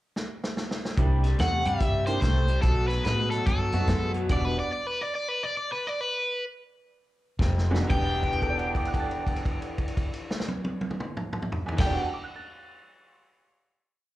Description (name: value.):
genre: electric blues shuffle.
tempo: 116-145 BPM.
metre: 4/4.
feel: swing 63% on 8ths.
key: E minor.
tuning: A4 = 439 Hz.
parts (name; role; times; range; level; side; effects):
vintage drum kit; drums; 0.2-4.4, 7.4-11.9 s; crash cymbal, hi-hat, kick drum, snare drum, toms; -29 LUFS; equal; none.
tack piano; accompaniment; 1.0-4.7, 7.7-12.4 s; E2 to A6; -34 LUFS; right 3 dB; slapback echo.
electric guitar at the edge of break-up; riff; 1.0-4.5, 7.4-12.0 s; E2 to G4; -33 LUFS; left 3 dB; wide subtle chorus, slapback echo.
vintage muted fingered electric bass; bass; 1.0-4.6, 7.4-12.0 s; E1 to A2; -27 LUFS; equal; none.
cranked stack guitar; melody; 1.4-12.0 s; A4 to G5; -29 LUFS; equal; overdrive, slapback echo.
room: small room reverb.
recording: live gig heard through the venue's PA, club reverb.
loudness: -24 LUFS.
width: side -16 dB against mid.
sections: 0.0-1.0 pickup bar; 1.0-7.9 head; 7.9-12.0 final chord.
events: drum fill 0.1-1.0, 7.4-7.9; slowing down 4.3-7.9; stop 4.3-7.4; held note 7.9-11.7.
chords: 0.0 N.C.; 1.0 C7; 2.6 B7; 4.3 Em7; 7.4 F5; 7.9 Em7.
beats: 0.15 0.56 | 0.98 1.39 1.81 2.22 | 2.64 3.05 3.46 3.88 | 4.29 4.71 5.13 5.56 | 6.00 6.45 6.91 7.40 | 7.90 8.42 8.94 9.45 | 9.97 10.49 11.01 11.53.